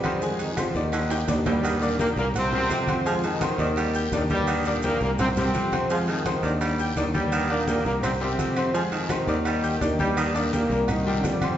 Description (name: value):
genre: latin, salsa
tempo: 169 BPM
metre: 4/4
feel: straight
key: Eb major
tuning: A4 = 440 Hz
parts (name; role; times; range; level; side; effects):
- brilliant trombone section; melody; 0.0-11.6 s; G2 to F4; -27 LUFS; equal; none
- growling baritone saxophone; second line; 0.0-11.4 s; C3 to G3; -32 LUFS; right 3 dB; none
- bright concert grand piano; accompaniment; 0.0-11.6 s; G3 to G6; -30 LUFS; left 2 dB; none
- sustaining fretless electric bass; bass; 0.0-11.6 s; C2 to F2; -28 LUFS; equal; none
- agogo bells and timbales; percussion; 0.0-11.6 s; none; -33 LUFS; right 4 dB; none
- claves; percussion; 0.0-1.1, 7.3-11.6 s; none; -42 LUFS; right 1 dB; none
- congas; percussion; 0.0-11.6 s; none; -32 LUFS; equal; none
- guiro; percussion; 0.0-11.6 s; none; -41 LUFS; left 4 dB; none
- maracas; percussion; 0.0-11.6 s; none; -45 LUFS; right 4 dB; none
room: wet recital hall reverb, RT60 1.6 s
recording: recorded in a church or concert hall, nothing above 7.6 kHz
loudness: -22 LUFS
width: side -11 dB against mid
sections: 0.0-1.6 A section; 1.6-11.6 A section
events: drum fill 0.9-1.6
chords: 0.2 Fm7; 0.9 Ebmaj7; 2.3 C7(no3); 3.1 Fm7; 3.8 Ebmaj7; 5.2 C7(no3); 5.9 Fm7; 6.6 Ebmaj7; 8.0 C7(no3); 8.7 Fm7; 9.5 Ebmaj7; 10.9 Cm7